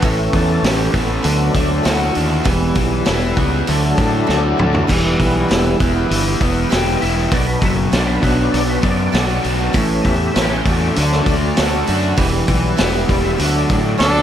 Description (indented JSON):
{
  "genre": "classic rock",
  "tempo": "99 BPM",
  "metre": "4/4",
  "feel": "straight",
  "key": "E dorian",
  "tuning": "A4 = 440 Hz",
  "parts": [
    { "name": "picked swing-style acoustic guitar", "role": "accompaniment", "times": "0.0-14.2 s", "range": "E2 to G4", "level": "-26 LUFS", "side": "right 11 dB", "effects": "none" },
    { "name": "tonewheel organ", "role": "sustained chords", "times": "0.0-14.2 s", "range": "E3 to G5", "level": "-21 LUFS", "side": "equal", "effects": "slow rotary speaker, overdrive, chorus vibrato" },
    { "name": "overdriven electric guitar", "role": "riff", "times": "0.0-14.2 s", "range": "A2 to G4", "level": "-20 LUFS", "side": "left 1 dB", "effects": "none" },
    { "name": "fuzz fingered electric bass", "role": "bass", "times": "0.0-14.2 s", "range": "E1 to A2", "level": "-20 LUFS", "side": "equal", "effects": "overdrive" },
    { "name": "vintage drum kit", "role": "drums", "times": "0.0-14.1 s", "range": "crash cymbal, hi-hat, kick drum, snare drum, toms", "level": "-20 LUFS", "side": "equal", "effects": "none" },
    { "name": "raspy tenor saxophone", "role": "melody", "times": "14.0-14.2 s", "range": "D4", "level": "-15 LUFS", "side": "equal", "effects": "none" },
    { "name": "nasal lead guitar with a parked wah", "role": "second line", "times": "14.0-14.2 s", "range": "A4", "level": "-20 LUFS", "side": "right 3 dB", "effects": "overdrive" }
  ],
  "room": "light reverb, small room reverb",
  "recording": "none",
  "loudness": "-14 LUFS",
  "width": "side -10 dB against mid",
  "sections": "0.0-14.2 A section",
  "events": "tonewheel organ solo 0.0-14.2; drum fill 4.3-4.9",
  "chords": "0.0 A; 1.2 D; 2.5 Em; 3.7 D; 4.9 Em; 7.3 Bm; 9.8 A; 11.0 D; 12.2 Em; 13.4 D"
}